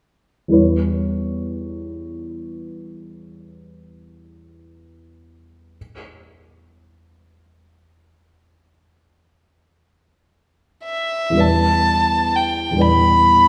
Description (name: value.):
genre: classical, impressionist duo for violin and grand piano.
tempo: 33-48 BPM (dotted quarters).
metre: 12/8.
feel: rubato.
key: E dorian.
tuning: A4 = 441 Hz.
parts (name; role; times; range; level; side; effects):
dark baby grand piano; accompaniment; 0.5-13.5 s; E2 to D5; -21 LUFS; equal; none.
rich violin; melody; 10.9-13.5 s; E5 to B5; -18 LUFS; equal; none.
room: wet recital hall reverb, RT60 1.6 s.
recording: heard from further back in the room.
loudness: -18 LUFS.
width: mono.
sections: 0.6-11.4 A section; 11.4-13.5 B section.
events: none.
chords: 0.6 Em6; 11.4 Em7.